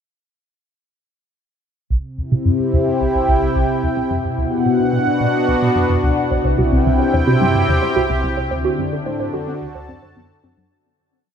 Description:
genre	ambient, sequencer-driven space music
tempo	109 BPM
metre	4/4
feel	straight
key	C lydian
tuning	A4 = 442 Hz
part	sweeping resonant pad	sustained chords	1.9-10.7 s	B2 to A5	-17 LUFS	left 1 dB	chorus
part	resonant blip pluck	riff	1.9-10.7 s	C2 to D3	-20 LUFS	equal	phaser, ping-pong delay
part	warbly dusty pluck	arpeggios	6.3-10.6 s	F#3 to C5	-24 LUFS	moving between left 3 dB and right 7 dB	chorus, auto-pan, ping-pong delay
room	moderate huge ambient reverb, RT60 8.9 s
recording	none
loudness	-15 LUFS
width	side -8 dB against mid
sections	1.9-10.7 A section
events	filter sweep on synth arpeggio sound 1.9-10.7; fade-out 7.8-10.7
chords	1.9 C; 4.1 Bm; 6.3 C; 8.5 D

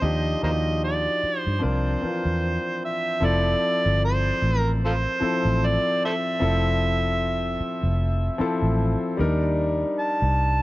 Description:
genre	lush 1970s-style soul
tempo	75 BPM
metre	4/4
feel	swing 58% on 16ths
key	F major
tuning	A4 = 440 Hz
part	overdriven harmonica	melody	0.0-10.6 s	F4 to A5	-25 LUFS	right 1 dB	tape echo
part	warm concert grand piano	accompaniment	0.0-10.6 s	E3 to Bb4	-26 LUFS	left 2 dB	none
part	vintage muted fingered electric bass	bass	0.0-10.6 s	F1 to G2	-23 LUFS	equal	none
room	light reverb, small room ambience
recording	dark, warm production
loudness	-21 LUFS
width	side -18 dB against mid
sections	0.0-3.2 A section; 3.2-10.6 B section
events	none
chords	0.0 Ebmaj9; 1.6 C9sus4; 3.2 Fmaj7; 9.2 Ebmaj7

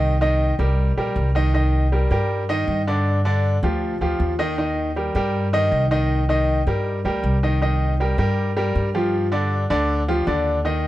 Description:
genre	latin, salsa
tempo	158 BPM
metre	4/4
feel	straight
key	C minor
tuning	A4 = 440 Hz
part	clear baby grand piano	accompaniment	0.0-10.9 s	D3 to Eb5	-22 LUFS	equal	none
part	upright bass	bass	0.0-10.9 s	Bb1 to G2	-21 LUFS	equal	none
room	light reverb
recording	dark, warm production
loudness	-18 LUFS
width	side -15 dB against mid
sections	0.0-7.6 A section; 7.6-10.9 B section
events	none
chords	0.0 Cm7; 3.1 G5; 4.6 Eb; 6.1 Cm7; 9.1 G5

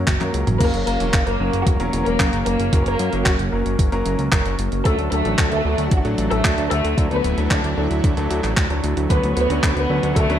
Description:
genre	italo disco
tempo	113 BPM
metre	4/4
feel	straight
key	unclear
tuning	A4 = 440 Hz
part	lush unison pad	sustained chords	0.0-10.4 s	D3 to C#5	-26 LUFS	right 1 dB	chorus
part	fat analog bass	bass	0.0-10.4 s	D1 to F#2	-22 LUFS	equal	none
part	clean 12-bit digital drum machine	drums	0.1-10.4 s	crash cymbal, handclaps, hi-hat, toms	-25 LUFS	equal	none
part	electronic kick drum	drums	0.1-10.3 s	none	-20 LUFS	equal	none
part	clear grand piano	stabs	0.2-10.4 s	F#3 to B4	-27 LUFS	left 1 dB	ping-pong delay
part	dark chamber violin section	melody	0.6-10.4 s	A3 to D5	-23 LUFS	left 1 dB	digital delay
room	light reverb, digital ambience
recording	dark, warm production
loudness	-17 LUFS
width	side -10 dB against mid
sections	0.6-10.4 A section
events	drum fill 0.1-0.6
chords	0.0 F#; 4.9 D; 9.1 Bmadd9/D

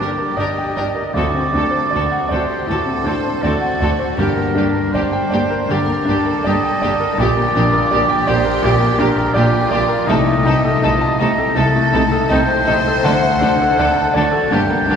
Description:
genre	classical, romantic movement for piano and orchestra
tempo	81 BPM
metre	4/4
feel	rubato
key	G minor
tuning	A4 = 441 Hz
part	clear grand piano	melody	0.0-15.0 s	Bb1 to A5	-18 LUFS	left 1 dB	none
part	clear studio violin section	melody	0.0-15.0 s	G4 to Bb4	-27 LUFS	left 3 dB	none
part	rich studio violin section	second line	0.0-15.0 s	D4 to C5	-25 LUFS	left 2 dB	none
part	warm oboe	second line	0.0-15.0 s	G4 to Bb5	-20 LUFS	right 1 dB	none
part	clear studio viola section	accompaniment	0.0-15.0 s	A3 to G4	-25 LUFS	right 2 dB	none
part	rich studio cello section	bass	0.0-15.0 s	D2 to D3	-24 LUFS	right 2 dB	none
part	rich studio double bass section	bass	0.0-15.0 s	G1 to D2	-24 LUFS	right 2 dB	none
part	timpani	percussion	1.2-5.3 s	G2 to D3	-31 LUFS	left 2 dB	none
room	wet cathedral reverb, RT60 6.3 s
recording	recorded in a church or concert hall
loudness	-14 LUFS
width	side -7 dB against mid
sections	0.0-15.0 A section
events	none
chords	0.0 Gm; 1.2 D7; 4.2 Gm; 7.2 Gm/Bb; 10.1 Adim/C; 13.0 D

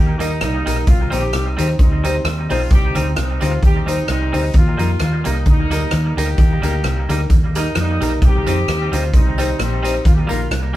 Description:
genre	ska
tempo	131 BPM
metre	4/4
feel	swing 55% on 8ths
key	Eb major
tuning	A4 = 441 Hz
part	warm horn section	melody	0.0-10.8 s	G3 to G4	-24 LUFS	equal	none
part	clean electric guitar	riff	0.0-10.7 s	Bb2 to F3	-28 LUFS	left 4 dB	none
part	vintage muted fingered electric bass	bass	0.0-10.7 s	Bb1 to F2	-20 LUFS	equal	none
part	semi-hollow electric guitar	accompaniment	0.2-10.8 s	G3 to Eb4	-27 LUFS	right 2 dB	analog delay
part	dark upright piano	stabs	0.2-10.8 s	Eb4 to C5	-26 LUFS	left 3 dB	none
part	swinging big-band drum kit	drums	0.2-10.6 s	hi-hat, kick drum, rim click	-17 LUFS	equal	none
part	tambourine	percussion	0.2-10.4 s	none	-38 LUFS	right 4 dB	none
room	moderate studio reverb, RT60 0.6 s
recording	band playing live in one room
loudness	-14 LUFS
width	side -15 dB against mid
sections	0.0-10.8 A section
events	none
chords	0.0 Eb; 0.9 Cm; 4.5 Eb; 8.2 Cm; 10.1 Eb

